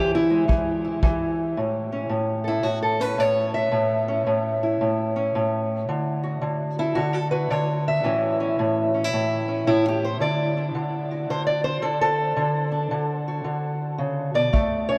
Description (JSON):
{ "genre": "acoustic country blues, solo or duo", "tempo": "111 BPM", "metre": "4/4", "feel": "swing 65% on 8ths", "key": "A major", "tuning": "A4 = 440 Hz", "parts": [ { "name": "fingerpicked steel-string acoustic guitar", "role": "melody", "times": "0.0-15.0 s", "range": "A2 to E5", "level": "-24 LUFS", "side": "equal", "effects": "none" }, { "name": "kick drum", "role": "drums", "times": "0.5-1.2, 14.5-14.7 s", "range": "none", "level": "-26 LUFS", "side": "equal", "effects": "none" } ], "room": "wet huge ambient reverb, RT60 8.6 s", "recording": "in a vast, echoing space", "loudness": "-24 LUFS", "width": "mono", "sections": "0.0-1.6 A section; 1.6-15.0 A section", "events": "steel-string acoustic guitar solo 0.0-1.6, 1.6-15.0", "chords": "0.0 E; 1.6 A; 5.9 D; 8.0 A; 10.2 D" }